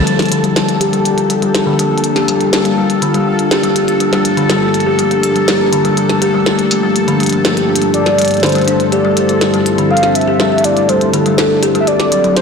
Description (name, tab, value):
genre	IDM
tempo	122 BPM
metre	4/4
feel	straight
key	G dorian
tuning	A4 = 439 Hz
part	glassy FM pad	sustained chords	0.0-12.4 s	G2 to A4	-17 LUFS	left 1 dB	ensemble chorus, built-in reverb
part	bubbling stepped-filter texture	texture	0.0-12.4 s	A4	-21 LUFS	left 2 dB	chorus, built-in reverb
part	kalimba	arpeggios	0.1-12.3 s	D3 to G4	-15 LUFS	left 2 dB	vintage 12-bit sampler grit, low-pass filter, tape echo
part	glitchy drum kit	drums	0.1-12.4 s	hi-hat, snare drum	-18 LUFS	equal	soft clipping on snare
part	warm velvety synth lead	melody	7.9-12.4 s	A4 to F5	-15 LUFS	right 1 dB	chorus, digital delay
room	wet lush hall reverb, RT60 2.5 s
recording	blown-out, overdriven recording, overdrive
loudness	-10 LUFS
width	side -5 dB against mid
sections	0.1-12.4 A section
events	band accent 0.0; filter sweep on kalimba 0.1-12.4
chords	0.1 Gm7; 4.0 Bbmaj7/G; 7.9 Fmaj7/G; 11.9 D7/G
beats	| 0.07 0.56 1.05 1.54 | 2.04 2.53 3.02 3.51 | 4.00 4.50 4.99 5.48 | 5.97 6.46 6.96 7.45 | 7.94 8.43 8.92 9.41 | 9.91 10.40 10.89 11.38 | 11.87 12.37